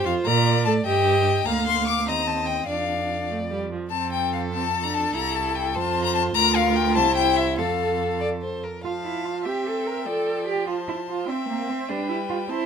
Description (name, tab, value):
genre	quick classical-period movement for string quartet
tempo	98 BPM (dotted quarters)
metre	6/8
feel	straight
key	Bb major, F major from 3.9 s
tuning	A4 = 443 Hz
part	clear violin	melody	0.0-12.7 s	E5 to D6	-25 LUFS	left 10 dB	none
part	clear violin	second line	0.0-12.7 s	A4 to F5	-30 LUFS	left 2 dB	none
part	rich viola	accompaniment	0.0-12.7 s	F3 to Bb4	-28 LUFS	right 3 dB	none
part	rich cello	bass	0.0-12.7 s	C2 to Bb4	-26 LUFS	right 5 dB	none
room	moderate stone room reverb, RT60 0.9 s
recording	minimal, uncompressed stereo recording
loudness	-21 LUFS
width	side -7 dB against mid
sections	0.0-8.8 A section; 8.8-12.7 B section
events	none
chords	0.3 Bb; 0.9 Eb/G; 1.5 Bb/D; 2.1 Cm/Eb; 2.7 Dm/F; 3.3 F; 5.2 C; 5.8 F; 6.4 Bb/D; 7.0 C; 7.6 F; 9.5 C7; 10.1 F; 11.3 C; 11.9 G7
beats	| 0.26 0.86 | 1.47 2.08 | 2.69 3.31 | 3.93 4.54 | 5.15 5.76 | 6.36 6.97 | 7.59 8.22 | 8.85 9.46 | 10.07 10.68 | 11.29 11.89 | 12.49